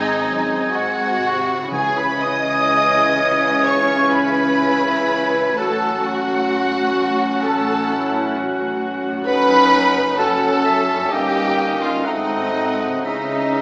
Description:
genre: classical, slow romantic movement for symphony orchestra.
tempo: 64 BPM.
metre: 4/4.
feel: uneven beats, rubato.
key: C# minor.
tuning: A4 = 441 Hz.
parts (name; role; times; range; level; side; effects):
rich symphonic violin section; melody; 0.0-13.6 s; D#5 to D#6; -29 LUFS; equal; none.
clear clarinet; second line; 0.0-13.6 s; B#3 to C#4; -30 LUFS; equal; none.
clear oboe; second line; 0.0-13.6 s; D#5 to G#5; -26 LUFS; equal; none.
small flute group; second line; 0.0-13.6 s; D#5 to D#6; -29 LUFS; equal; none.
warm symphonic violin section; second line; 0.0-13.6 s; D#4 to D#5; -25 LUFS; equal; none.
dark bassoon; accompaniment; 0.0-13.6 s; E3 to A#3; -29 LUFS; equal; none.
rich symphonic viola section; accompaniment; 0.0-13.6 s; B#3 to F#4; -30 LUFS; equal; none.
dark French horn section; sustained chords; 0.0-13.6 s; D#3 to C#4; -29 LUFS; equal; none.
concert harp; arpeggios; 0.0-13.6 s; F#2 to A#4; -40 LUFS; equal; none.
mellow trumpet section; stabs; 0.0-13.6 s; D#4 to D#5; -26 LUFS; equal; none.
rich symphonic cello section; bass; 0.0-13.6 s; F#2 to C#3; -30 LUFS; equal; none.
rich symphonic double bass section; bass; 0.0-13.6 s; F#1 to C#2; -38 LUFS; equal; none.
timpani; percussion; 1.7-3.1 s; C#3; -38 LUFS; equal; none.
room: wet scoring stage reverb, RT60 1.5 s.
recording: small speaker sound.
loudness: -18 LUFS.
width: mono.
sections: 0.0-13.6 A section.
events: none.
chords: 0.0 G#; 1.7 C#m; 5.6 F#m/A; 9.3 F#m; 11.1 D#7/G; 12.1 G#7b9; 13.1 C#m.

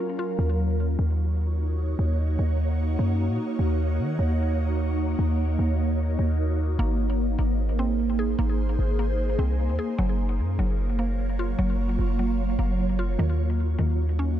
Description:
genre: hip hop.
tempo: 150 BPM.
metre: 4/4.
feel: half-time.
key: Eb dorian.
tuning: A4 = 440 Hz.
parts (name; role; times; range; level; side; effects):
ethereal airy pad; sustained chords; 0.0-14.4 s; Gb3 to Db5; -28 LUFS; right 1 dB; ensemble chorus, built-in reverb, phaser.
mallet-like synth pluck; arpeggios; 0.0-0.4, 6.8-14.4 s; Eb3 to Ab4; -34 LUFS; left 1 dB; chorus, ping-pong delay.
warm 808-style bass; bass; 0.4-14.4 s; Gb1 to Eb3; -24 LUFS; equal; none.
room: little or no reverb.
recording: dark, warm production, low-pass filter.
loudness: -23 LUFS.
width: side -11 dB against mid.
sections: 0.4-13.2 A section; 13.2-14.4 B section.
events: none.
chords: 0.4 Ebm7; 6.8 Abadd9; 10.0 Gbmaj7; 13.2 Ebm7.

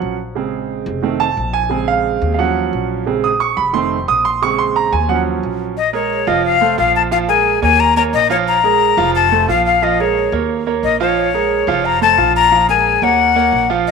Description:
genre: latin, salsa.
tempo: 178 BPM.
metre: 4/4.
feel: straight.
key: Bb minor.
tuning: A4 = 440 Hz.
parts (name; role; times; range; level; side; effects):
clear concert grand piano; accompaniment; 0.0-13.9 s; Db3 to Eb6; -16 LUFS; right 8 dB; none.
upright bass; bass; 0.0-13.9 s; F1 to Eb2; -24 LUFS; left 2 dB; none.
breathy bright jazz flute; melody; 5.8-13.9 s; Db5 to Bb5; -13 LUFS; left 9 dB; none.
room: wet spring reverb, RT60 1.8 s.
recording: 1960s-style stereo with parts hard left and right.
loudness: -13 LUFS.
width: side -5 dB against mid.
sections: 0.0-5.8 A section; 5.8-13.9 B section.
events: grand piano solo 0.0-5.8.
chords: 0.4 Bbm7; 1.0 F7; 1.7 Bbm7; 2.4 Ebm7; 3.1 Bbm7; 3.7 F7; 4.4 Bbm7; 5.1 Ebm7; 5.8 Bbm7; 6.4 F; 7.1 Bbm7; 7.8 Eb5; 8.5 Bb5; 9.1 F; 9.8 Bbm7; 10.5 Eb5; 11.2 Bbm7; 11.8 F; 12.5 Bbm7; 13.2 Ebm7.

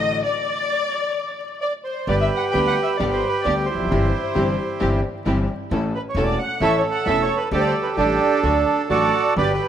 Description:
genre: tango.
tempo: 131 BPM.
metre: 4/4.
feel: rubato.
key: G major.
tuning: A4 = 440 Hz.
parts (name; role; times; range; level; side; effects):
warm studio violin section; second line; 0.0-9.7 s; A4 to G5; -26 LUFS; left 4 dB; none.
warm concert grand piano; accompaniment; 0.0-9.6 s; E1 to A4; -25 LUFS; left 2 dB; none.
clear studio string section; stabs; 0.0-9.6 s; D3 to A4; -30 LUFS; right 2 dB; none.
upright bass; bass; 0.0-9.6 s; E1 to D2; -26 LUFS; equal; none.
bandoneon; melody; 1.6-9.7 s; D4 to G5; -20 LUFS; right 4 dB; none.
room: moderate plate reverb, RT60 3.9 s.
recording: rough home demo mix, vinyl crackle.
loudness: -18 LUFS.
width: side -9 dB against mid.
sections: 0.0-2.1 A section; 2.1-9.7 B section.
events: violin section solo 0.0-2.1; stop 0.2-2.1.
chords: 0.2 N.C.; 2.1 G; 3.9 C/G; 5.7 A; 7.5 Dsus4; 8.4 D.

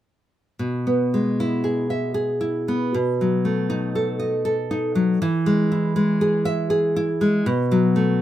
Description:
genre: romantic piece for solo classical guitar.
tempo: 79 BPM.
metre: 3/4.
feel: uneven beats, rubato.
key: E major.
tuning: A4 = 440 Hz.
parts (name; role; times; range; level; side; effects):
nylon-string guitar; solo; 0.6-8.2 s; B2 to E5; -19 LUFS; equal; none.
room: moderate studio reverb, RT60 0.5 s.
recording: minimal, uncompressed stereo recording.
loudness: -19 LUFS.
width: side -12 dB against mid.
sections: 0.6-8.2 A section.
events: none.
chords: 0.6 E/B; 2.9 B7; 5.2 E; 7.4 B7(no3).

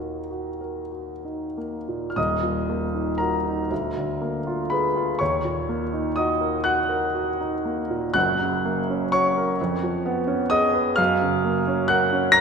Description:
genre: classical, romantic nocturne for solo piano.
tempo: 30-45 BPM (dotted quarters).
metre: 12/8.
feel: rubato.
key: Eb minor.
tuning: A4 = 442 Hz.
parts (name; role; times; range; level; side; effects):
warm concert grand piano; solo; 0.0-12.4 s; Eb1 to Bb6; -21 LUFS; equal; none.
room: wet concert hall reverb, RT60 1.9 s.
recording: none.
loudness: -21 LUFS.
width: side -6 dB against mid.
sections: 0.0-2.2 A section; 2.2-12.4 A section.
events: none.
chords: 0.0 Ebm; 3.7 Bb7/D; 5.2 Ebm; 8.1 Gb; 9.6 Db7/F; 11.0 Gb.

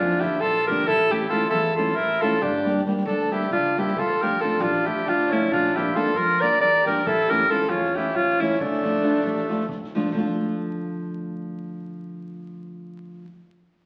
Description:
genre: balkan folk, Balkan wedding band.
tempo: 272 BPM (eighths).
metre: 7/8.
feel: straight.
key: D harmonic minor.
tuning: A4 = 440 Hz.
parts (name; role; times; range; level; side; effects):
bright alto saxophone; melody; 0.0-9.7 s; D4 to D5; -24 LUFS; equal; none.
accordion; second line; 0.0-9.7 s; A3 to Bb4; -28 LUFS; equal; none.
upright bass; bass; 0.0-13.2 s; G1 to F2; -38 LUFS; equal; none.
soft-mallet drum kit; percussion; 0.1-10.4 s; kick drum, snare drum; -44 LUFS; equal; none.
nylon-string guitar; accompaniment; 0.2-13.3 s; D3 to G4; -30 LUFS; equal; none.
room: wet large studio reverb, RT60 1.5 s.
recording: very old 78 rpm record, vinyl crackle.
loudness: -22 LUFS.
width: mono.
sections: 0.0-10.2 A section; 10.2-13.2 B section.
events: none.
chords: 0.0 Bb; 0.9 A; 2.4 Gm; 4.0 Dm; 5.5 Bb; 7.1 A; 8.6 Dm.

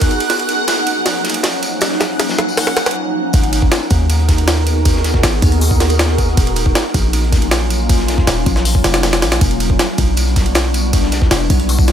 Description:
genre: drum and bass, jungle.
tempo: 158 BPM.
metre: 4/4.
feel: straight.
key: G# minor.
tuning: A4 = 440 Hz.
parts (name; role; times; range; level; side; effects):
ethereal airy pad; sustained chords; 0.0-11.9 s; E#3 to A#4; -19 LUFS; equal; ensemble chorus, built-in reverb.
crunchy breakbeat drum kit; drums; 0.0-11.9 s; hi-hat, snare drum, tambourine; -26 LUFS; left 4 dB; high-pass filter on hats, high-pass filter on snare, high-pass filter on perc, high-pass filter on room.
jungle sampler-style drum kit; drums; 0.0-11.9 s; hi-hat, kick drum, ride cymbal, snare drum; -16 LUFS; equal; none.
backwards swelling texture; texture; 0.0-3.0 s; F#5 to F#6; -22 LUFS; right 2 dB; built-in reverb.
warm 808-style bass; bass; 3.3-11.9 s; D#1 to D#2; -16 LUFS; equal; none.
room: light reverb, small room ambience.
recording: none.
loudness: -12 LUFS.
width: side -9 dB against mid.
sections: 0.0-3.3 A section; 3.3-11.9 B section.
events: build-up 0.0-3.3; drum fill 0.3-3.0; break 3.0-3.3; drop 3.3-11.9.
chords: 0.3 D#m9; 3.3 G#m9; 6.4 D#m9; 9.4 Em9.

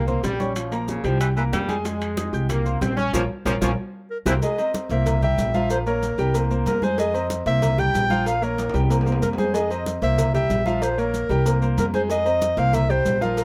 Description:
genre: latin, salsa.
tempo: 188 BPM.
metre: 4/4.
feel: straight.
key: unclear.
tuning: A4 = 441 Hz.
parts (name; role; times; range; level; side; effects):
bright trombone section; melody; 0.0-4.3 s; F3 to E4; -30 LUFS; equal; none.
upright bass; bass; 0.0-13.4 s; Bb1 to F2; -26 LUFS; equal; none.
warm grand piano; accompaniment; 0.1-13.4 s; F3 to G6; -29 LUFS; equal; none.
bongos and cowbell; percussion; 0.1-13.4 s; none; -36 LUFS; equal; none.
congas; percussion; 0.1-13.4 s; none; -32 LUFS; equal; none.
maracas; percussion; 0.1-13.4 s; none; -42 LUFS; equal; none.
timbales and agogo bells; percussion; 0.2-13.4 s; none; -36 LUFS; equal; none.
breathy baritone saxophone; second line; 0.9-4.3 s; Db3 to G3; -31 LUFS; equal; none.
dark clarinet; melody; 4.1-13.4 s; Bb4 to G5; -26 LUFS; equal; none.
room: light reverb.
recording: none.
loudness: -22 LUFS.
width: mono.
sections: 0.0-4.4 A section; 4.4-13.4 B section.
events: drum fill 3.1-4.4, 8.6-9.5; band accent 3.1-4.4.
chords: 0.0 C5; 1.9 Fm7; 2.5 C5; 3.1 Bbm; 3.8 C7; 4.4 C7alt; 5.1 C7; 5.7 Bbm; 6.3 Fmadd11/C; 7.0 Fm7; 7.6 C5; 8.3 Bbm; 8.9 Fmadd11/C; 9.5 Fm7; 10.2 C7; 10.8 Bbm; 11.5 Fmadd11/C; 12.1 Fm7; 12.7 C5.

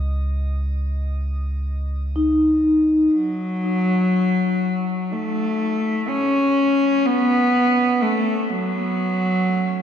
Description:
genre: ambient.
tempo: free time.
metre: none.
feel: none.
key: unclear.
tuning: A4 = 439 Hz.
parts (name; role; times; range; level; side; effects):
warm sub bass; bass; 0.0-3.1 s; C#2; -23 LUFS; right 1 dB; none.
drifting glass-harmonics texture; texture; 0.0-3.2 s; D#5 to D#6; -46 LUFS; equal; chorus, built-in reverb.
vibraphone with soft mallets; arpeggios; 2.2-3.2 s; D#4; -20 LUFS; left 1 dB; tape echo.
rich cello; melody; 3.1-9.8 s; F#3 to C#4; -18 LUFS; equal; tape echo.
room: wet lush hall reverb, RT60 2.5 s.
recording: cassette tape.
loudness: -18 LUFS.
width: side -9 dB against mid.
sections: 0.0-3.1 A section; 3.1-9.8 B section.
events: none.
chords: 0.0 C#sus2; 3.1 N.C..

